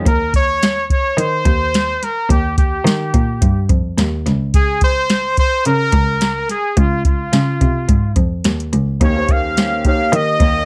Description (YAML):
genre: indie pop, bedroom pop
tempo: 107 BPM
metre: 4/4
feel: swing 55% on 16ths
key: unclear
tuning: A4 = 436 Hz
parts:
  - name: clean electric guitar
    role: accompaniment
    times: 0.0-0.1, 9.0-10.7 s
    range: Eb3 to G4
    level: -28 LUFS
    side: equal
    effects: subtle chorus, warbly pitch drift
  - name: warm upright piano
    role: accompaniment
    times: 0.0-0.1, 9.0-10.7 s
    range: Bb3 to Db5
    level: -25 LUFS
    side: equal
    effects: cassette tape
  - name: clear trumpet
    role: melody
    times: 0.1-10.7 s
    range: F4 to F5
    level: -20 LUFS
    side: equal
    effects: analog chorus, slapback echo
  - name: rich cello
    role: bass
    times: 0.1-10.7 s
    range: Db2 to Eb3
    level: -21 LUFS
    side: equal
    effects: none
  - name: soft vintage rhythm box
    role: drums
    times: 0.1-10.5 s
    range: hi-hat, kick drum, snare drum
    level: -18 LUFS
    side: equal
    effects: none
room: light reverb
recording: none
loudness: -16 LUFS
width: mono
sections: 0.1-10.7 A section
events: none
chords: 0.1 Eb; 4.3 Db; 9.0 Eb7